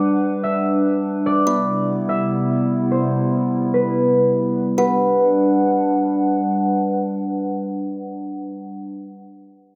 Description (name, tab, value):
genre	hip hop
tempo	145 BPM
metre	4/4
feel	half-time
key	G major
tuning	A4 = 440 Hz
part	concert harp	melody	0.0-6.8 s	B4 to F#5	-24 LUFS	equal	low-pass filter, tape echo
part	warbly tape-like pad	sustained chords	0.0-8.8 s	C3 to F#5	-22 LUFS	equal	chorus, built-in reverb, low-pass filter
part	kalimba	texture	0.0-9.2 s	B3 to B5	-32 LUFS	equal	none
room	moderate digital room reverb, RT60 1.0 s, digital ambience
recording	none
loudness	-19 LUFS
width	mono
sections	0.0-4.8 A section; 4.8-8.1 B section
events	filter sweep 0.0-4.8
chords	0.0 Gmaj7; 1.5 Cmaj7; 4.8 Gmaj7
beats	0.23 0.64 1.05 | 1.47 1.88 2.29 2.71 | 3.12 3.54 3.95 4.36 | 4.78 5.19 5.61 6.02 | 6.43 6.85 7.26 7.67